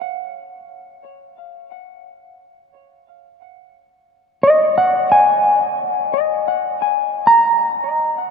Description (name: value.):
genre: ambient.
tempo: free time.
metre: none.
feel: none.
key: unclear.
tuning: A4 = 437 Hz.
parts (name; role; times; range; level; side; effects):
mellow electric guitar; solo; 0.0-8.3 s; D#5 to A#5; -14 LUFS; left 1 dB; warbly pitch drift, ping-pong delay.
room: wet cathedral reverb, RT60 5.7 s.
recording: in a vast, echoing space.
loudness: -13 LUFS.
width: side -6 dB against mid.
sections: 0.0-8.3 A section.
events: none.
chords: 0.0 C#add11 (rootless); 4.4 D#m.